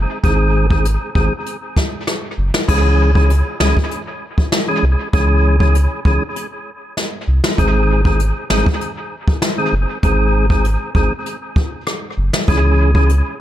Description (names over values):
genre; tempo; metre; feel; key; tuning
dancehall; 98 BPM; 4/4; straight; C# harmonic minor; A4 = 440 Hz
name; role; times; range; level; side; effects
sub bass with octave; bass; 0.0-13.2 s; F#1 to C#2; -15 LUFS; equal; none
percussive tonewheel organ; accompaniment; 0.2-13.1 s; D#3 to G#4; -19 LUFS; equal; overdrive, chorus vibrato, fast rotary speaker, dub echo
jazz brush drum kit; drums; 0.2-13.2 s; crash cymbal, hi-hat, kick drum, rim click, snare drum; -18 LUFS; equal; dub echo
room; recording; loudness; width
studio ambience; echo-heavy mix; -14 LUFS; side -12 dB against mid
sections
0.0-2.7 A section; 2.7-13.4 B section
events
none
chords
0.0 G#; 2.7 C#m; 7.6 G#; 12.5 C#m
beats
| 0.24 0.85 1.46 2.07 | 2.69 3.30 3.91 4.52 | 5.13 5.75 6.36 6.97 | 7.58 8.20 8.81 9.42 | 10.03 10.64 11.26 11.87 | 12.48 13.09